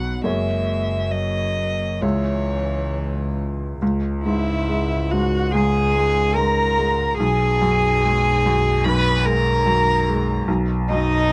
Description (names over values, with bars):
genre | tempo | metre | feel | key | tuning
neoclassical piano and strings | 65-74 BPM | 4/4 | rubato | C# dorian | A4 = 440 Hz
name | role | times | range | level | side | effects
dark violin | melody | 0.0-11.3 s | C#5 to B5 | -28 LUFS | equal | none
warm cello | second line | 0.0-11.3 s | E3 to B4 | -25 LUFS | equal | none
felt-muted upright piano | accompaniment | 0.0-11.3 s | B1 to E5 | -26 LUFS | equal | none
dark double bass | bass | 0.0-11.3 s | F#1 to C#2 | -26 LUFS | equal | none
room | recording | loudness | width
light reverb | nothing above 10.7 kHz | -20 LUFS | mono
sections
0.0-3.8 A section; 3.8-11.3 B section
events
none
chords
0.2 F#add9; 2.0 C#m; 7.2 G#m7/B; 10.5 B5